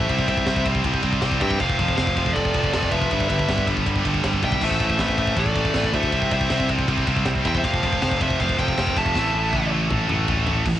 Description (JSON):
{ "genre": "heavy metal", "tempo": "159 BPM", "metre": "4/4", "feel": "straight", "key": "A minor", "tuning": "A4 = 439 Hz", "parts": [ { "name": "high-gain lead guitar", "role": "melody", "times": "0.0-9.7 s", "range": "D5 to A5", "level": "-27 LUFS", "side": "left 1 dB", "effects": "distortion, cassette tape" }, { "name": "high-gain lead guitar", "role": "second line", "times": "0.0-9.7 s", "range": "A4 to E5", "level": "-31 LUFS", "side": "right 1 dB", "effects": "distortion, cassette tape" }, { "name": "heavy high-gain guitar", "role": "riff", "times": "0.0-10.8 s", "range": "F2 to C4", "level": "-28 LUFS", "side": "left 10 dB", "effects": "distortion, cassette tape" }, { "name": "high-gain distorted guitar", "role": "riff", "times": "0.0-10.7 s", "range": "F2 to C4", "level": "-30 LUFS", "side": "equal", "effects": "distortion, cassette tape" }, { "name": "scooped high-gain guitar", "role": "riff", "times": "0.0-10.8 s", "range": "F2 to C4", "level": "-26 LUFS", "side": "right 6 dB", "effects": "distortion, cassette tape" }, { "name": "modern bright picked electric bass", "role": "bass", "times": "0.0-10.8 s", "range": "F1 to G2", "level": "-25 LUFS", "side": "equal", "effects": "none" }, { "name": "tight metal drum kit", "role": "drums", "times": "0.0-10.7 s", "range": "crash cymbal, kick drum, ride cymbal, snare drum, toms", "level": "-26 LUFS", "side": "equal", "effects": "none" } ], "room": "small room reverb", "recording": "home recording on cassette, nothing above 10.5 kHz", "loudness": "-19 LUFS", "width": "side -12 dB against mid", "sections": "0.0-10.7 A section", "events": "drum fill 9.1-10.7", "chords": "0.1 C; 1.6 F; 3.1 G; 4.6 Am; 6.1 C; 7.6 F5; 9.1 A5" }